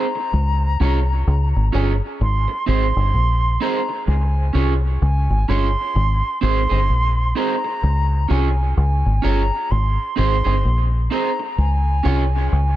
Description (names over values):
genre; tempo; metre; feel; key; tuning
dub reggae; 64 BPM; 4/4; swing 61% on 16ths; unclear; A4 = 440 Hz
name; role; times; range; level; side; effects
mellow silver concert flute; melody; 0.0-12.8 s; Ab5 to C6; -24 LUFS; equal; dub echo
electric guitar at the edge of break-up; accompaniment; 0.0-12.2 s; C4 to Db5; -25 LUFS; right 5 dB; dub echo
deep dub fingered electric bass; bass; 0.3-12.8 s; G1 to Db2; -17 LUFS; equal; none
room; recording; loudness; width
little or no reverb; echo-heavy mix; -16 LUFS; side -14 dB against mid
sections
0.0-12.8 A section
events
none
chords
0.3 Db; 2.2 Ab; 4.1 Db; 5.9 Ab; 7.8 Db; 9.7 Ab; 11.6 Db